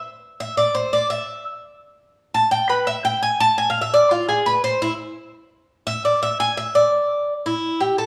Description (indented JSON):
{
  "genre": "latin",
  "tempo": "170 BPM",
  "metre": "4/4",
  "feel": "straight",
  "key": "A minor",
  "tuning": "A4 = 439 Hz",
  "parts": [
    { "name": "Cuban tres", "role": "solo", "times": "0.4-8.1 s", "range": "E4 to A5", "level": "-20 LUFS", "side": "equal", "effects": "none" }
  ],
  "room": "wet stone room reverb, RT60 1.3 s",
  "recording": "band playing live in one room, small room reverb",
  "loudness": "-20 LUFS",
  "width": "mono",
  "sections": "0.0-7.5 A section",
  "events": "Cuban tres solo 0.0-7.5",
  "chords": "none"
}